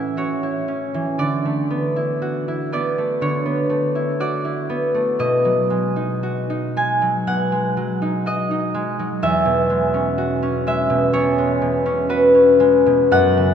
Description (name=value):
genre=classical, solo harp piece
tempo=60 BPM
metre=4/4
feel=uneven beats, rubato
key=unclear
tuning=A4 = 440 Hz
part: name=concert harp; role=solo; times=0.0-13.5 s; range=E2 to G#5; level=-17 LUFS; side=equal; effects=none
room=wet cathedral reverb, RT60 5.2 s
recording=none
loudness=-17 LUFS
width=side -8 dB against mid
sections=0.0-13.5 A section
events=none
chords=0.0 F#m7/A; 1.2 D69; 5.2 B6; 9.2 E69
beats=0.17 | 1.19 2.22 3.22 4.20 | 5.20 6.23 7.28 8.27 | 9.23 10.20 11.16 12.12 | 13.14